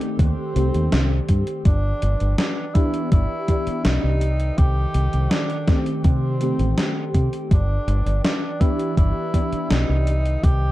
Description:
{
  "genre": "vaporwave",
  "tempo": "82 BPM",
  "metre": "4/4",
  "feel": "straight",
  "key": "G major",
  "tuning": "A4 = 440 Hz",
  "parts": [
    { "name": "mellow FM electric piano", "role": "accompaniment", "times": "0.0-10.1 s", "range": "Eb3 to D5", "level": "-26 LUFS", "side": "equal", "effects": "ensemble chorus, tape echo" },
    { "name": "warbly tape-like pad", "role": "sustained chords", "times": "0.0-10.7 s", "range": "Eb3 to G5", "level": "-32 LUFS", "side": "equal", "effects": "chorus, built-in reverb" },
    { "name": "gated 80s digital drum machine", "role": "drums", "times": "0.0-10.6 s", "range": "hi-hat, snare drum", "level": "-24 LUFS", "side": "equal", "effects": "gated reverb, gated reverb snare, overdrive" },
    { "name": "warm tenor saxophone", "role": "melody", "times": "0.2-10.7 s", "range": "C4 to G4", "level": "-29 LUFS", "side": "right 1 dB", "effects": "tape echo" },
    { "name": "fingered electric bass", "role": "bass", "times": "0.2-10.7 s", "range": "G1 to C3", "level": "-20 LUFS", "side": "equal", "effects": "none" },
    { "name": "electronic kick drum", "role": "drums", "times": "0.2-10.6 s", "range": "none", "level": "-18 LUFS", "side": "equal", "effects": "overdrive" }
  ],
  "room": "digital ambience",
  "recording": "echo-heavy mix, cassette tape",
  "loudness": "-18 LUFS",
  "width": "side -16 dB against mid",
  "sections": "0.0-10.7 A section",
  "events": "none",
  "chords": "0.0 Cm6; 1.7 G6; 4.2 Cm6; 7.5 G6; 10.1 Cm6"
}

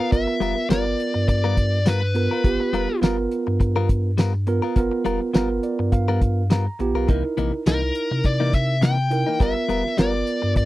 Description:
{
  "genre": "straight-eighth soul blues",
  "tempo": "103 BPM",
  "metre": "4/4",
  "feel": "swing 54% on 16ths",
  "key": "unclear",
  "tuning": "A4 = 442 Hz",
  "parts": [
    { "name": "dark smooth lead guitar", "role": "melody", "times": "0.0-3.0, 7.7-10.7 s", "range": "Bb4 to G5", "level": "-25 LUFS", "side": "left 2 dB", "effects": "overdrive" },
    { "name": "bright tine electric piano", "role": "accompaniment", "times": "0.0-10.7 s", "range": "B3 to A#5", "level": "-24 LUFS", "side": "right 4 dB", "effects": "none" },
    { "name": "direct-recorded clean electric guitar", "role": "stabs", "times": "0.0-10.6 s", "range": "C3 to A#4", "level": "-27 LUFS", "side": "left 6 dB", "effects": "none" },
    { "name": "pure sine sub bass", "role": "bass", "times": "0.1-10.7 s", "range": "F1 to C3", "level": "-23 LUFS", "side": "equal", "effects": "none" },
    { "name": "cloth-damped thuddy drum kit", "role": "drums", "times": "0.1-10.7 s", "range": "hi-hat, kick drum, snare drum, tambourine", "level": "-19 LUFS", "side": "equal", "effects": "none" }
  ],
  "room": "little or no reverb",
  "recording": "dry, close 1970s-style studio recording",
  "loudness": "-19 LUFS",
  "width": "side -16 dB against mid",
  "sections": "0.0-10.7 A section",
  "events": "tine electric piano fill 5.3-7.1",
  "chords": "0.0 G7#9; 7.1 C7#9; 9.4 G7#9"
}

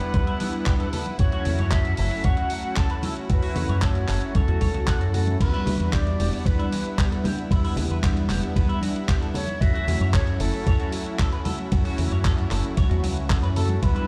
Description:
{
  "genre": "nu-disco, nu disco",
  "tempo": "114 BPM",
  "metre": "4/4",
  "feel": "straight",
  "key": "unclear",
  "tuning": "A4 = 440 Hz",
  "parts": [
    { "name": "mellow silver concert flute", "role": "melody", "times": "0.0-14.1 s", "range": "A4 to A5", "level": "-34 LUFS", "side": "equal", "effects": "dub echo" },
    { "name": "warm analog pad", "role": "accompaniment", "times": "0.0-14.1 s", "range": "F#3 to F#5", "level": "-32 LUFS", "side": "equal", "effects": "chorus, sidechain pumping, dub echo" },
    { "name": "bright symphonic string section", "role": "sustained chords", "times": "0.0-14.1 s", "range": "E4 to F#5", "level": "-43 LUFS", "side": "equal", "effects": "sidechain pumping" },
    { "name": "dusty soul sampler-style drum kit", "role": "drums", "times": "0.0-14.1 s", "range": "crash cymbal, handclaps, hi-hat, ride cymbal", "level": "-37 LUFS", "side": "equal", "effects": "none" },
    { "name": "electric guitar with an envelope filter", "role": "riff", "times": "0.1-14.1 s", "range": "E3 to F#5", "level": "-39 LUFS", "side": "equal", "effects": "lush chorus, dub echo" },
    { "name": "fingered electric bass with an envelope filter", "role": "bass", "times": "0.1-13.9 s", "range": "E1 to F#2", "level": "-27 LUFS", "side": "equal", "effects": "sidechain pumping" },
    { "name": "electronic kick drum", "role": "drums", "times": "0.1-13.9 s", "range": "none", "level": "-24 LUFS", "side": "equal", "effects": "none" },
    { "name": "congas", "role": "percussion", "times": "0.1-13.8 s", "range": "none", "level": "-34 LUFS", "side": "equal", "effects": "none" }
  ],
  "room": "little or no reverb",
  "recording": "played on a big sound system in a bare room, stone room reverb",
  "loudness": "-23 LUFS",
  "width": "mono",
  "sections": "0.0-14.1 A section",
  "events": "none",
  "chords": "0.0 Em7; 0.9 F#m7; 5.4 Em7; 9.4 F#m7"
}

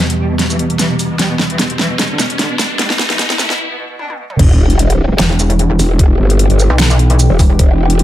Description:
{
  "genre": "heavy wobble dubstep",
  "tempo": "150 BPM",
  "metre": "4/4",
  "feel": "swing 53% on 16ths, half-time",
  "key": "E minor",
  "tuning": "A4 = 440 Hz",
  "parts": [
    { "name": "rich cello", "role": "melody", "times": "0.0-4.4 s", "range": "B2 to D4", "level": "-22 LUFS", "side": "right 1 dB", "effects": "ping-pong delay" },
    { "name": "lush unison pad", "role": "sustained chords", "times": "0.0-8.0 s", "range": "E2 to G4", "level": "-20 LUFS", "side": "equal", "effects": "chorus, sidechain pumping" },
    { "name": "riser and sub drop", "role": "sound effects", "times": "0.9-6.0 s", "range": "none", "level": "-20 LUFS", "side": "equal", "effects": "none" },
    { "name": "dubstep drum kit", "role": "drums", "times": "0.1-8.0 s", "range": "crash cymbal, hi-hat, shaker, snare drum, toms", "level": "-16 LUFS", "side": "equal", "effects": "overdrive" },
    { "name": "growl bass", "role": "bass", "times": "4.4-8.0 s", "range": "E1 to G1", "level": "-11 LUFS", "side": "equal", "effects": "chorus, overdrive" },
    { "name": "electronic kick drum", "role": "drums", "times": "4.4-7.7 s", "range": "none", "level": "-10 LUFS", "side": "equal", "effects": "overdrive" },
    { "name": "pulsing pluck wobble bass", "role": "bass", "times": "5.2-7.6 s", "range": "E1 to B1", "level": "-11 LUFS", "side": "equal", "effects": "chorus, overdrive" }
  ],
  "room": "light reverb, digital ambience",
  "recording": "high-pass filter",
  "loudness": "-10 LUFS",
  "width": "side -13 dB against mid",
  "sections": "0.0-4.4 A section; 4.4-8.0 B section",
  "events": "build-up 0.0-4.4; drum fill 0.0-3.6, 4.0-4.4; filter sweep 0.0-4.4; riser 0.9-3.6; break 3.6-4.4; drop 4.4-8.0; impact 4.4-6.0",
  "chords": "0.0 Em"
}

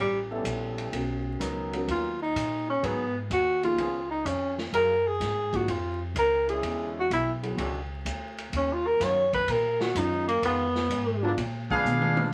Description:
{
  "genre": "jazz, big band swing",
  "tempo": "126 BPM",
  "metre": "4/4",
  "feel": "swing 69% on 8ths",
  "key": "Eb minor",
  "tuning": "A4 = 440 Hz",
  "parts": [
    { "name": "breathy tenor saxophone", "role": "melody", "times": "0.0-11.4 s", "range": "G3 to Db5", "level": "-28 LUFS", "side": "equal", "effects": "none" },
    { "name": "upright bass", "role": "bass", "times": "0.0-12.3 s", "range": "A1 to Cb3", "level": "-36 LUFS", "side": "equal", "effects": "none" },
    { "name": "dark concert grand piano", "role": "accompaniment", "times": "0.3-11.4 s", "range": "Eb3 to E5", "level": "-35 LUFS", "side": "equal", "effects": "none" },
    { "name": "bright trombone section", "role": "sustained chords", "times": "0.3-11.3 s", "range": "D3 to A#4", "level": "-37 LUFS", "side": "equal", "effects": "none" },
    { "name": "swinging big-band drum kit", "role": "drums", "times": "0.5-12.3 s", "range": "hi-hat, kick drum, ride cymbal, snare drum, toms", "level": "-38 LUFS", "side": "equal", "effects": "none" },
    { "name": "warm trumpet section", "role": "melody", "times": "11.7-12.3 s", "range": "D4 to F5", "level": "-27 LUFS", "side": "equal", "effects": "none" },
    { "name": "mellow trombone section", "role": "second line", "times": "11.7-12.3 s", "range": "Ab3 to F4", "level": "-36 LUFS", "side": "equal", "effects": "none" }
  ],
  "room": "wet studio reverb, RT60 0.5 s",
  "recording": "vinyl crackle",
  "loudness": "-28 LUFS",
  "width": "mono",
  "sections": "0.0-12.3 A section",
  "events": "tenor saxophone solo 0.0-12.3; drum fill 11.9-12.3",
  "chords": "0.0 A9; 0.9 Bmaj7; 2.8 Abm7; 3.8 Db7; 4.7 Gbmaj9; 6.6 E13; 8.5 Ebm9; 10.4 Fm7b5; 11.4 Bb7b9"
}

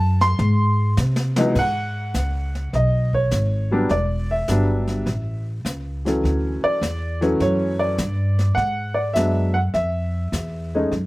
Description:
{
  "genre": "jazz piano trio",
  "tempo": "102 BPM",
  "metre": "4/4",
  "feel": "swing 68% on 8ths",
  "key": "C# minor",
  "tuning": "A4 = 440 Hz",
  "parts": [
    { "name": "warm upright piano", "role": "melody", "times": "0.0-10.9 s", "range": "C#2 to B#5", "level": "-22 LUFS", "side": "equal", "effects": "none" },
    { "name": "upright bass", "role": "bass", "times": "0.0-11.1 s", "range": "E1 to B#2", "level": "-21 LUFS", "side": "equal", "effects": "none" },
    { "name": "jazz brush drum kit", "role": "drums", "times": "0.2-11.1 s", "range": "brushed snare drum, crash cymbal, hi-hat, kick drum, snare drum", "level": "-30 LUFS", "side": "left 1 dB", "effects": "none" }
  ],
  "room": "little or no reverb",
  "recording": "recorded outdoors, with no room sound, faint mains hum",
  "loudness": "-19 LUFS",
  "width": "side -19 dB against mid",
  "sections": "0.0-1.6 A section; 1.6-11.1 B section",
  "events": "upright piano solo 0.0-1.6; drum fill 1.0-1.6",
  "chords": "0.4 G#; 1.6 C#7sus4; 3.9 Em9; 5.1 A; 6.2 Dmaj7; 8.6 G#m7b5; 9.8 N.C."
}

